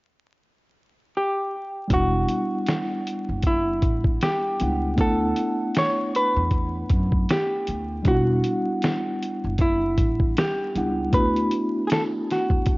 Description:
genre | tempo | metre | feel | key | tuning
lo-fi hip hop | 78 BPM | 4/4 | swing 57% on 16ths | E minor | A4 = 443 Hz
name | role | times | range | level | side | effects
hollow-body jazz guitar | melody | 1.2-12.8 s | E4 to C#5 | -25 LUFS | equal | low-pass filter
mellow tine electric piano | accompaniment | 1.9-12.8 s | G3 to F#5 | -26 LUFS | equal | medium stereo tremolo, cassette tape, low-pass filter
upright bass | bass | 1.9-12.8 s | E1 to F#2 | -26 LUFS | equal | none
lo-fi sampler-style drum kit | drums | 1.9-12.8 s | hi-hat, kick drum, snare drum | -23 LUFS | equal | none
room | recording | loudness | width
light reverb | worn, warbling old tape, cassette tape, vinyl crackle, warbly pitch drift, nothing above 7.5 kHz | -21 LUFS | side -23 dB against mid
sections
0.0-1.9 A section; 1.9-12.8 B section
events
none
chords
0.0 N.C.; 1.9 Em9; 5.0 D69; 8.1 Em9; 11.1 D69

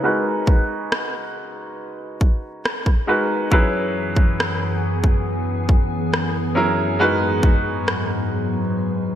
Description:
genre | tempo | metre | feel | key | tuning
contemporary R&B | 69 BPM | 4/4 | straight | unclear | A4 = 440 Hz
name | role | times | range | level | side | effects
clear grand piano | accompaniment | 0.0-9.2 s | F#3 to B4 | -22 LUFS | right 1 dB | low-pass filter
trap drum kit | drums | 0.5-8.1 s | kick drum, rim click | -19 LUFS | equal | gated reverb
glassy FM pad | sustained chords | 3.8-9.2 s | F#2 to G#4 | -23 LUFS | left 1 dB | ensemble chorus, built-in reverb, low-pass filter
room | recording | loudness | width
moderate lush hall reverb, RT60 2.9 s | bright 1980s-style digital production | -18 LUFS | side -10 dB against mid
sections
0.0-9.2 A section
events
filter sweep 0.0-9.2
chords
0.0 G#m7; 3.5 F#9sus4; 7.0 G#m7

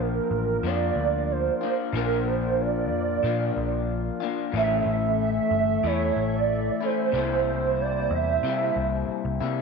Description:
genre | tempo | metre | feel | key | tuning
indie pop | 92 BPM | 4/4 | straight | unclear | A4 = 440 Hz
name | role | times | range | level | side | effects
hollow clarinet-like synth lead | melody | 0.0-9.1 s | Bb4 to E5 | -26 LUFS | right 9 dB | ensemble chorus, tape echo
electric guitar through a small old amp | accompaniment | 0.0-9.6 s | A2 to F4 | -28 LUFS | left 13 dB | wide subtle chorus, warbly pitch drift
hollow soft pad | sustained chords | 0.0-9.6 s | C3 to E5 | -35 LUFS | equal | chorus
vintage muted picked electric bass | bass | 0.0-9.6 s | G1 to C3 | -29 LUFS | right 1 dB | none
room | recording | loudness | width
moderate plate reverb, RT60 2.6 s | 1960s-style stereo with parts hard left and right | -23 LUFS | side -4 dB against mid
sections
0.0-9.6 A section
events
none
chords
0.0 Bb; 4.5 A; 7.1 C7

